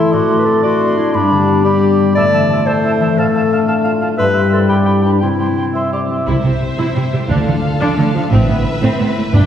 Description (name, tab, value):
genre	cinematic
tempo	118 BPM (dotted quarters)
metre	6/8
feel	straight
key	C major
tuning	A4 = 440 Hz
part	mellow cor anglais	second line	0.0-6.3 s	D5 to G5	-22 LUFS	right 2 dB	none
part	silver concert flute	second line	0.0-6.2 s	A5 to C6	-23 LUFS	left 1 dB	none
part	warm clarinet	second line	0.0-6.1 s	D4 to D5	-18 LUFS	left 1 dB	none
part	warm French horn section	sustained chords	0.0-6.1 s	G3 to C4	-16 LUFS	left 2 dB	none
part	concert harp	arpeggios	0.0-9.5 s	G2 to D5	-19 LUFS	left 3 dB	none
part	rich symphonic violin section	melody	6.3-9.5 s	E5 to G5	-26 LUFS	left 3 dB	none
part	clear symphonic violin section	second line	6.3-9.5 s	A4 to C5	-26 LUFS	left 2 dB	none
part	rich studio viola section	accompaniment	6.3-9.5 s	F3 to E4	-20 LUFS	right 1 dB	none
part	rich symphonic cello section	bass	6.3-9.4 s	G2 to D3	-17 LUFS	right 3 dB	none
part	rich symphonic double bass section	bass	6.3-9.5 s	G1 to D2	-18 LUFS	right 2 dB	none
part	timpani	percussion	9.3-9.5 s	G2	-10 LUFS	equal	none
room	wet scoring stage reverb, RT60 1.5 s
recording	heard from further back in the room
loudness	-12 LUFS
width	side -9 dB against mid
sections	0.0-6.3 A section; 6.3-9.5 B section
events	none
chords	0.1 D7/A; 1.1 G; 2.2 Am; 3.2 Dm/A; 4.2 C/G; 4.7 G; 5.2 C; 7.3 Dm; 8.3 Amadd9